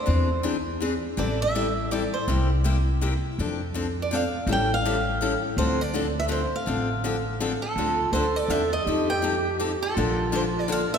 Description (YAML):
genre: acoustic string swing (jazz manouche)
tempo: 164 BPM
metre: 3/4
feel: swing 63% on 8ths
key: D minor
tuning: A4 = 440 Hz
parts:
  - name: picked swing-style acoustic guitar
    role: melody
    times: 0.0-11.0 s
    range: A4 to G5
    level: -28 LUFS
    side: right 2 dB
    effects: none
  - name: picked steel-string acoustic guitar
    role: accompaniment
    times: 0.1-10.8 s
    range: C3 to A4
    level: -27 LUFS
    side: left 4 dB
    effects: none
  - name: upright bass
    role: bass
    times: 0.1-10.8 s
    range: A1 to F2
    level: -27 LUFS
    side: equal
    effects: none
  - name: breathy clarinet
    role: second line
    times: 7.8-11.0 s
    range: F4 to A4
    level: -29 LUFS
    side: right 3 dB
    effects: none
room: wet church reverb, RT60 3.0 s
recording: recorded in a church or concert hall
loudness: -22 LUFS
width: side -7 dB against mid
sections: 0.0-7.8 A section; 7.8-11.0 B section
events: none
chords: 0.1 Eaug7; 1.2 Am7; 2.3 C7; 3.4 F6; 4.5 A7b13; 5.6 Dm7; 8.9 F7; 10.0 Bbmaj7